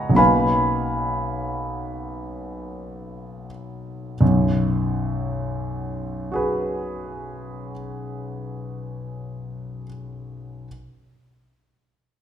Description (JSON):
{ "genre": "classical, impressionist solo piano", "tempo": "28-34 BPM (dotted quarters)", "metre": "6/8", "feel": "rubato", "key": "B lydian", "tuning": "A4 = 440 Hz", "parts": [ { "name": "warm concert grand piano", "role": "solo", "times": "0.0-10.7 s", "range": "B1 to D#6", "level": "-23 LUFS", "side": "equal", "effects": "none" } ], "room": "wet recital hall reverb, RT60 1.5 s", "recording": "minimal, uncompressed stereo recording", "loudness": "-22 LUFS", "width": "side -9 dB against mid", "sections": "0.0-4.2 A section; 4.2-8.4 B section", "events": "slowing down 0.0-4.2", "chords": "0.2 Bmaj9; 4.2 B5", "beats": "| 0.19 2.12 | 4.21 6.32" }